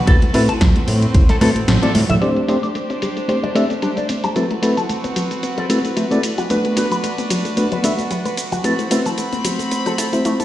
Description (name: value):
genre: nu-disco, nu disco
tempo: 112 BPM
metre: 4/4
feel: swing 55% on 16ths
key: A dorian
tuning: A4 = 440 Hz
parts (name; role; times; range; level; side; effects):
- rich chamber string section; sustained chords; 0.0-10.4 s; A3 to B5; -24 LUFS; equal; sidechain pumping, low-pass filter
- fat analog bass; bass; 0.0-2.2 s; A1 to A2; -17 LUFS; equal; none
- reed electric piano; accompaniment; 0.1-10.4 s; A3 to E5; -20 LUFS; equal; fast tremolo, sidechain pumping, analog delay
- electric guitar with an envelope filter; riff; 0.1-10.4 s; A3 to D6; -25 LUFS; left 1 dB; wide subtle chorus, low-pass filter, analog delay
- electronic kick drum; drums; 0.1-1.3 s; none; -13 LUFS; equal; none
- house drum kit; drums; 0.1-10.4 s; hi-hat, rim click, shaker, snare drum; -26 LUFS; equal; low-pass filter on hats, low-pass filter on snare, low-pass filter on perc
- congas; percussion; 0.2-2.2 s; none; -23 LUFS; right 2 dB; none
- analog pluck; arpeggios; 2.2-10.4 s; F#3 to E4; -25 LUFS; left 2 dB; chorus, sidechain pumping, tape echo
room: moderate lush hall reverb, RT60 1.6 s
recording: played on a big sound system in a bare room, stone room reverb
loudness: -15 LUFS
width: side -13 dB against mid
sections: 0.0-2.2 A section; 2.2-10.4 B section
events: kick drops out 1.7-2.2; band accent 1.7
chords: 0.1 Am69; 2.2 D7sus4; 4.4 Am69; 6.2 Bm7; 8.6 Am69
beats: | 0.07 0.61 1.15 1.68 | 2.22 2.75 3.29 3.83 | 4.36 4.90 5.43 5.97 | 6.50 7.04 7.58 8.11 | 8.65 9.18 9.72 10.25